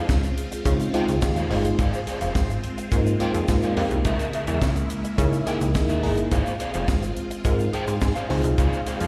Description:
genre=early-eighties boogie funk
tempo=106 BPM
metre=4/4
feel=straight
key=Ab major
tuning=A4 = 440 Hz
part: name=FM electric piano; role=accompaniment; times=0.0-9.1 s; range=Ab3 to C6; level=-29 LUFS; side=equal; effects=chorus, slapback echo
part: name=phased string machine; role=sustained chords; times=0.0-9.1 s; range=Db3 to F4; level=-34 LUFS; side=equal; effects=ensemble chorus, phaser
part: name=electric guitar at the edge of break-up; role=riff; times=0.0-9.1 s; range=Ab4 to G5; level=-33 LUFS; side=equal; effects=ensemble chorus, slapback echo
part: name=plucky analog bass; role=bass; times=0.0-9.1 s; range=F1 to Db3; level=-26 LUFS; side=equal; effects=none
part: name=tight funk drum kit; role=drums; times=0.1-9.1 s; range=hi-hat, kick drum, snare drum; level=-29 LUFS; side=equal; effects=none
part: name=egg shaker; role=percussion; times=0.1-9.1 s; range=none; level=-47 LUFS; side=equal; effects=none
room=small room ambience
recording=live gig heard through the venue's PA, recital hall reverb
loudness=-23 LUFS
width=mono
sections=0.0-9.1 A section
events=FM electric piano fill 5.2-6.3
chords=0.0 Dbmaj7; 1.8 Ab6; 4.1 Dbm6; 6.3 Ab6; 8.3 Dbmaj7

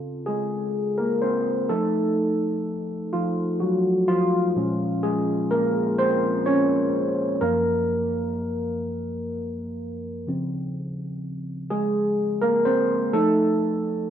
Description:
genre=R&B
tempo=42 BPM (dotted quarters)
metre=6/8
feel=straight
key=Db major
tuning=A4 = 440 Hz
part: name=overdriven tine electric piano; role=solo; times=0.0-14.1 s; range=Gb2 to Db5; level=-22 LUFS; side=equal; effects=wide subtle chorus
room=wet studio reverb, RT60 0.6 s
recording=rough home demo mix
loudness=-21 LUFS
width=side -9 dB against mid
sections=0.0-14.1 A section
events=tine electric piano solo 0.0-14.1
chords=0.0 Dbmaj7; 1.7 F7b9; 4.6 Bbm9; 7.4 Gbmaj7; 10.3 Dbmaj7; 13.1 F7

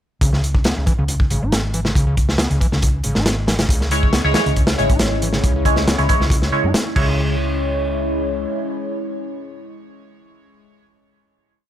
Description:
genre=breakbeat, breaks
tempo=138 BPM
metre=4/4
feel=straight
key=C# minor pentatonic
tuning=A4 = 441 Hz
part: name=overdriven acid bass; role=riff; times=0.2-7.4 s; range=C#2 to E4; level=-25 LUFS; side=equal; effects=distortion, cassette tape, dub echo
part: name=hollow-body short-scale fingered electric bass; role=bass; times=0.2-8.4 s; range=G#1 to F#2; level=-21 LUFS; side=equal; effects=none
part: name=crunchy breakbeat drum kit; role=drums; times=0.2-7.1 s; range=crash cymbal, hi-hat, kick drum, snare drum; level=-18 LUFS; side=equal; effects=none
part: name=dark analog pad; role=sustained chords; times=4.5-10.9 s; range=G#3 to C#5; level=-24 LUFS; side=left 1 dB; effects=chorus, phaser, sidechain pumping
part: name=band-passed chord stab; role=stabs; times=3.9-10.8 s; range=G#3 to C#5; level=-22 LUFS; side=right 1 dB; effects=phaser, wide subtle chorus, dub echo
room=small room ambience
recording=none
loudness=-16 LUFS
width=side -11 dB against mid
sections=0.2-7.2 groove; 7.2-10.7 final hit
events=none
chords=0.2 C#m

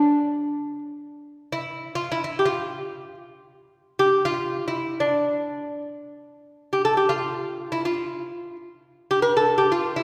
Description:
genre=Persian modal ensemble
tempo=free time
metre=none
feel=none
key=unclear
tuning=A4 = 440 Hz
part: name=lute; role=solo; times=0.0-10.0 s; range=D4 to Bb4+50c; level=-24 LUFS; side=equal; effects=slapback echo
room=wet concert hall reverb, RT60 2.0 s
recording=heard from further back in the room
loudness=-24 LUFS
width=mono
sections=0.0-6.3 A section; 6.3-10.0 A section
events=none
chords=none

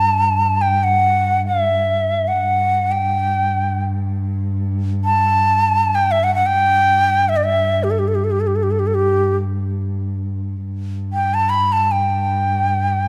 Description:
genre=Persian modal ensemble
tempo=free time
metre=none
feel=none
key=unclear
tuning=A4 = 440 Hz
part: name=breathy bright ney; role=melody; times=0.0-13.1 s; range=G4 to B5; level=-18 LUFS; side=equal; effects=none
part: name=dark cello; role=drone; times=0.0-13.1 s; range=G2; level=-24 LUFS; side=equal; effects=none
room=moderate scoring stage reverb, RT60 2.0 s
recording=none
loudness=-18 LUFS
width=mono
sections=0.0-10.6 A section; 10.6-13.1 A section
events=none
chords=none

